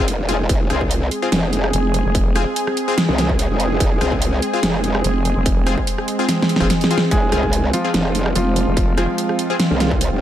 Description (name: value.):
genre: heavy wobble dubstep.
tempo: 145 BPM.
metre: 4/4.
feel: swing 54% on 16ths, half-time.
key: F minor.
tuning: A4 = 440 Hz.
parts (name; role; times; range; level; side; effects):
lush unison pad; sustained chords; 0.1-10.2 s; Ab3 to Ab4; -23 LUFS; right 2 dB; chorus, sidechain pumping.
supersaw stab; stabs; 0.0-9.6 s; C4 to Ab4; -25 LUFS; left 4 dB; ping-pong delay.
growl bass; bass; 0.0-10.2 s; F1 to C2; -20 LUFS; equal; chorus, overdrive.
dubstep drum kit; drums; 0.1-10.1 s; hi-hat, rim click, snare drum; -21 LUFS; equal; studio reverb.
electronic kick drum; drums; 0.5-10.0 s; none; -20 LUFS; equal; distortion, studio reverb.
vowel-sweep wobble bass; bass; 1.7-2.4, 5.0-9.1 s; F1; -19 LUFS; equal; chorus, overdrive.
warm grand piano; melody; 7.1-9.5 s; F3 to Ab4; -23 LUFS; equal; ping-pong delay.
room: digital ambience.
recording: none.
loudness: -16 LUFS.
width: side -11 dB against mid.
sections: 0.0-10.2 A section.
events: drum fill 6.3-7.1.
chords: 0.0 Fm.